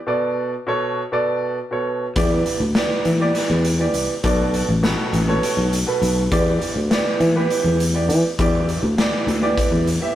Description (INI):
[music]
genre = progressive instrumental, band music in an uneven meter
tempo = 202 BPM (eighths)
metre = 7/8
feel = straight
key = E dorian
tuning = A4 = 442 Hz
[part]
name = clear concert grand piano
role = accompaniment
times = 0.1-10.2 s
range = B2 to E5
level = -21 LUFS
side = right 2 dB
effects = none
[part]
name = sustaining fretless electric bass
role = bass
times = 2.2-10.0 s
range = A1 to E3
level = -20 LUFS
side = left 1 dB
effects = none
[part]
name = raw garage drum kit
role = drums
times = 2.2-10.0 s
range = hi-hat, kick drum, snare drum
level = -23 LUFS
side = left 1 dB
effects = none
[sound]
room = moderate stone room reverb, RT60 1.0 s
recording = rough rehearsal-room recording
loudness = -17 LUFS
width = side -12 dB against mid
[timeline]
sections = 0.0-10.2 A section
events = none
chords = 0.1 Bm7; 2.2 Em7; 4.2 Bm7; 6.3 Em7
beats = | 0.07 0.37 0.67 0.97 1.26 1.56 1.86 | 2.16 2.46 2.75 3.05 3.35 3.64 3.94 | 4.24 4.54 4.83 5.13 5.43 5.72 6.02 | 6.32 6.61 6.91 7.21 7.50 7.80 8.10 | 8.39 8.69 8.98 9.28 9.57 9.87